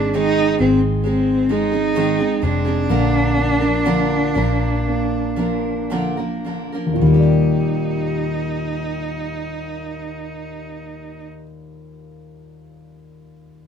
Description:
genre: pop.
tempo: 53-67 BPM.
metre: 4/4.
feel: straight.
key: Eb major.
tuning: A4 = 439 Hz.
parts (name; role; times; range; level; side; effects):
warm cello; melody; 0.0-11.2 s; C4 to Eb4; -22 LUFS; right 1 dB; none.
warm concert grand piano; accompaniment; 0.0-13.7 s; Eb2 to D5; -22 LUFS; left 1 dB; none.
picked steel-string acoustic guitar; arpeggios; 0.0-11.4 s; Ab2 to Bb4; -24 LUFS; right 2 dB; ping-pong delay.
vintage muted fingered electric bass; bass; 0.0-11.2 s; F1 to Eb2; -22 LUFS; equal; none.
room: moderate studio reverb, RT60 0.5 s.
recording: rough rehearsal-room recording.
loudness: -16 LUFS.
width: side -7 dB against mid.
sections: 0.0-7.0 A section; 7.0-11.5 B section.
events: slowing down 0.0-7.0.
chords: 0.0 Ab; 2.9 Bb; 7.0 Ebmaj7.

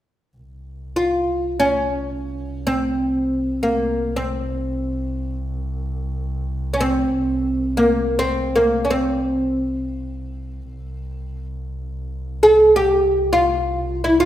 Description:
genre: turkish.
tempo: free time.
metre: none.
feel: none.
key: C makam hicaz.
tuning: A4 = 441 Hz.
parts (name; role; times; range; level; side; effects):
muted double bass; drone; 0.4-14.3 s; C2; -28 LUFS; equal; none.
oud; melody; 1.0-14.3 s; Bb3 to A4-40c; -17 LUFS; equal; none.
room: moderate scoring stage reverb, RT60 1.5 s.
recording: minimal, uncompressed stereo recording.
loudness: -18 LUFS.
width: side -12 dB against mid.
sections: 0.4-14.3 A section.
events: none.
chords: none.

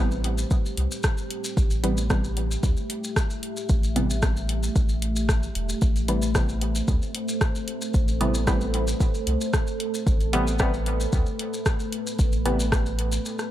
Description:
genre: dub techno.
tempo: 113 BPM.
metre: 4/4.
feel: straight.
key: unclear.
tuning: A4 = 442 Hz.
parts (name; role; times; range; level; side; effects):
deep dark ambient pad; sustained chords; 0.2-13.5 s; A3 to E5; -31 LUFS; equal; chorus, built-in reverb, sidechain pumping.
filtered dub chord stab; stabs; 0.0-12.6 s; C3 to B3; -29 LUFS; equal; chorus, phaser, cassette tape, sidechain pumping, dub echo.
soft dub sub bass; bass; 0.0-13.2 s; E1 to D2; -26 LUFS; equal; tube saturation, sidechain pumping.
maracas; percussion; 0.1-13.5 s; none; -36 LUFS; left 2 dB; none.
deep house drum kit; drums; 0.2-13.5 s; hi-hat, rim click; -31 LUFS; equal; none.
electronic kick drum; drums; 0.5-12.8 s; none; -23 LUFS; equal; none.
room: light reverb.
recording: none.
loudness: -22 LUFS.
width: side -13 dB against mid.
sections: 0.0-13.5 A section.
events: break 13.3.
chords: 0.0 Am7.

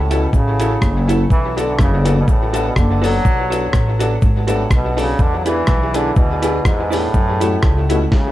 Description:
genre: ska.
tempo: 123 BPM.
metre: 4/4.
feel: swing 55% on 8ths.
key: B dorian.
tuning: A4 = 440 Hz.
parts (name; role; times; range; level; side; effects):
bright trombone; melody; 0.0-8.3 s; G#2 to F#3; -21 LUFS; equal; tape echo.
upright bass; bass; 0.0-8.0 s; F#1 to F#2; -19 LUFS; equal; none.
vintage hollow-body jazz guitar; accompaniment; 0.1-8.1 s; E4 to D5; -26 LUFS; right 5 dB; tape echo.
tack piano; stabs; 0.1-8.0 s; A3 to A4; -22 LUFS; left 3 dB; tape echo.
dusty soul sampler-style drum kit; drums; 0.1-8.2 s; hi-hat, kick drum, rim click, snare drum; -16 LUFS; equal; none.
cabasa; percussion; 0.1-8.0 s; none; -42 LUFS; left 7 dB; none.
room: light reverb.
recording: none.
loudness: -14 LUFS.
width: side -14 dB against mid.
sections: 0.0-8.3 A section.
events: none.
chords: 0.0 F#m7; 1.3 Bm7; 5.2 E7; 7.1 F#m7.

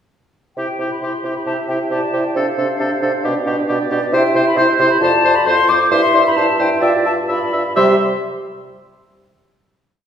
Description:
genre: quick classical-period movement for wind quintet.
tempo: 133 BPM.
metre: 4/4.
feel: uneven beats.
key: C major.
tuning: A4 = 440 Hz.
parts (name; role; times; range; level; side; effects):
hollow concert flute; melody; 0.6-8.0 s; F5 to D6; -20 LUFS; left 5 dB; none.
clear oboe; second line; 0.6-8.0 s; G4 to E5; -21 LUFS; left 2 dB; none.
warm French horn; accompaniment; 0.6-8.0 s; G3 to F4; -22 LUFS; equal; none.
clear bassoon; bass; 0.6-8.0 s; F2 to C3; -20 LUFS; right 2 dB; none.
mellow clarinet; accompaniment; 1.5-8.0 s; G4 to E5; -20 LUFS; right 5 dB; none.
room: wet recital hall reverb, RT60 1.7 s.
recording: recorded in a church or concert hall.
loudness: -14 LUFS.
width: side -8 dB against mid.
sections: 0.6-7.8 A section; 7.8-9.6 final chord.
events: none.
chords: 0.6 C; 2.4 Dm7/C; 3.2 G7/B; 4.1 C; 5.0 F5; 5.9 C/G; 6.8 G6; 7.8 C5.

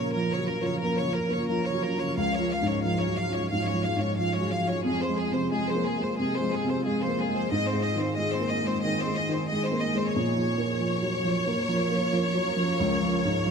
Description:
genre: neoclassical piano and strings.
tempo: 90 BPM.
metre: 4/4.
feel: rubato.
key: Bb minor.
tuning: A4 = 440 Hz.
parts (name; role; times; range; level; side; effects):
clear studio violin section; melody; 0.0-13.5 s; Ab4 to F5; -29 LUFS; left 1 dB; none.
warm cello; second line; 0.0-13.5 s; Db3 to C4; -34 LUFS; right 3 dB; none.
dark baby grand piano; accompaniment; 0.0-13.5 s; Db2 to Bb3; -27 LUFS; equal; none.
granular cloud pad; sustained chords; 0.0-13.5 s; C4 to Bb4; -36 LUFS; left 1 dB; built-in reverb.
room: moderate recital hall reverb, RT60 1.4 s.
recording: none.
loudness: -24 LUFS.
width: side -6 dB against mid.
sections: 0.0-13.5 A section.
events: none.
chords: 0.0 Bbm; 2.2 Db; 4.8 Fm; 7.5 Ab; 10.2 Bbm; 12.8 Db.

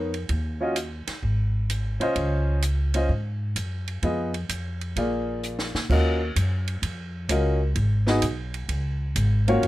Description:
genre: jazz, small-group swing and bop.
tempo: 129 BPM.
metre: 4/4.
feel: swing 68% on 8ths.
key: Db major.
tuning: A4 = 440 Hz.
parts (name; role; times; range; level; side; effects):
warm upright piano; accompaniment; 0.0-9.7 s; Bb3 to Eb5; -25 LUFS; equal; none.
upright bass; bass; 0.0-9.7 s; Gb1 to Bb2; -25 LUFS; equal; none.
compact cocktail drum kit; drums; 0.1-9.7 s; crash cymbal, hi-hat, kick drum, ride cymbal, snare drum; -32 LUFS; right 2 dB; none.
room: light reverb.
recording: none.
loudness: -23 LUFS.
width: side -16 dB against mid.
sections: 0.0-5.9 A section; 5.9-9.7 B section.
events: drum fill 5.4-5.9.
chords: 0.3 Ebm9; 1.2 Ab; 2.2 Dbmaj9; 4.0 Fm7b5; 5.0 Bb7; 5.9 Ebm9; 7.8 Abm7; 8.7 Db.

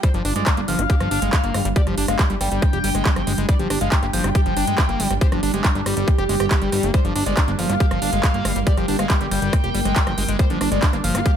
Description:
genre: psychedelic trance.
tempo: 139 BPM.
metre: 4/4.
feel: straight.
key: G phrygian.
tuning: A4 = 440 Hz.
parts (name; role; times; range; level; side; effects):
overdriven synth lead; melody; 0.0-11.4 s; D4 to G5; -26 LUFS; left 2 dB; chorus, phaser, sidechain pumping, digital delay.
evolving wavetable pad; sustained chords; 0.0-11.4 s; G3 to D4; -27 LUFS; right 2 dB; chorus, built-in reverb, sidechain pumping.
screaming distorted acid line; riff; 0.0-11.3 s; F3 to G4; -26 LUFS; moving between left 4 dB and right 4 dB; distortion, chorus, auto-pan, sidechain pumping, digital delay.
big-room dance drum kit; drums; 0.0-11.3 s; handclaps, hi-hat, rim click; -26 LUFS; right 2 dB; studio ambience.
electronic kick drum; drums; 0.0-11.3 s; none; -18 LUFS; equal; overdrive, studio ambience.
plucky analog bass; bass; 0.1-11.2 s; F1 to G1; -24 LUFS; equal; none.
room: digital ambience.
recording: none.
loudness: -17 LUFS.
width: side -9 dB against mid.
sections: 0.0-11.4 A section.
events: none.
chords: 0.0 G5.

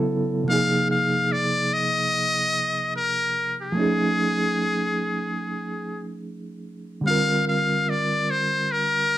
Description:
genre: R&B.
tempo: 73 BPM.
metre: 4/4.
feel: swing 60% on 16ths.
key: unclear.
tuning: A4 = 444 Hz.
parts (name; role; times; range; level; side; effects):
reed electric piano; accompaniment; 0.0-9.2 s; C3 to Bb4; -25 LUFS; right 2 dB; overdrive, fast tremolo.
trumpet with metal mute; melody; 0.5-9.2 s; Ab4 to F5; -23 LUFS; left 2 dB; slapback echo.
room: moderate studio reverb, RT60 0.5 s.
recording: dark, warm production.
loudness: -21 LUFS.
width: side -13 dB against mid.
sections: 0.0-9.2 A section.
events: none.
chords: 0.5 Fm7; 3.8 F7alt; 7.0 Bbadd9.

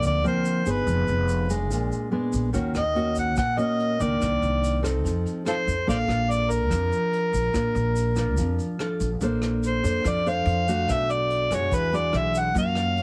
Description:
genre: bossa nova.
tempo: 144 BPM.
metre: 4/4.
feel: straight.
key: Bb major.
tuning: A4 = 440 Hz.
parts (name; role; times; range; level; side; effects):
overdriven harmonica; melody; 0.0-13.0 s; F4 to F#5; -28 LUFS; equal; none.
nylon-string guitar; accompaniment; 0.0-13.0 s; Bb2 to C5; -29 LUFS; equal; none.
upright bass; bass; 0.0-13.0 s; F1 to F#2; -30 LUFS; equal; none.
tube shaker; percussion; 0.0-13.0 s; none; -45 LUFS; equal; none.
vintage brush drum kit; drums; 2.5-13.0 s; hi-hat, kick drum, rim click; -36 LUFS; equal; none.
room: little or no reverb.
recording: heavily compressed radio sound.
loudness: -24 LUFS.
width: mono.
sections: 0.0-9.2 A section; 9.2-13.0 B section.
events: none.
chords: 0.0 Gm7; 0.9 Fm7b5; 1.7 Bb7b9; 2.5 Ebm7; 4.2 Cm9; 5.0 F7; 5.9 Bbmaj7; 9.2 Bbmaj9; 10.9 Bm7; 11.7 E9.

